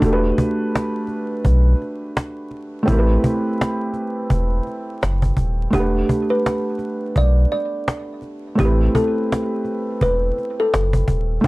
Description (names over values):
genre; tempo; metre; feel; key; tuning
lo-fi hip hop; 84 BPM; 4/4; swing 59% on 16ths; unclear; A4 = 440 Hz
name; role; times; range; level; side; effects
felt-muted upright piano; accompaniment; 0.0-11.5 s; A3 to F#5; -22 LUFS; right 1 dB; cassette tape, low-pass filter
warm sub bass; bass; 0.0-11.5 s; D#1 to B1; -17 LUFS; equal; none
cajon; drums; 0.0-11.5 s; none; -21 LUFS; equal; none
kalimba; melody; 5.7-11.4 s; G4 to D5; -23 LUFS; equal; low-pass filter, analog delay
room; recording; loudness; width
light reverb; dry, gritty hardware recording, vinyl crackle; -17 LUFS; side -21 dB against mid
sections
0.0-11.5 A section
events
none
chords
0.0 Em11 (rootless); 2.9 Am9; 5.7 Em11 (rootless); 8.6 Am9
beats
| 0.02 0.73 1.45 2.16 | 2.87 3.59 4.30 5.02 | 5.73 6.45 7.16 7.87 | 8.59 9.30 10.02 10.73 | 11.45